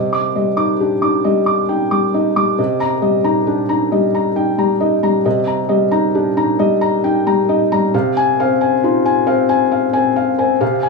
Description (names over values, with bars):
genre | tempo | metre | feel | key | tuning
neoclassical minimalist piano | 45 BPM (dotted quarters) | 6/8 | rubato | unclear | A4 = 440 Hz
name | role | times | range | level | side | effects
felt-muted upright piano | solo | 0.0-10.9 s | C3 to D6 | -13 LUFS | left 1 dB | none
room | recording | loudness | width
light reverb | studio reverb | -13 LUFS | side -3 dB against mid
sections
0.0-10.9 A section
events
none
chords
0.0 Cmadd9; 2.6 Eb/C; 7.9 Ab6/C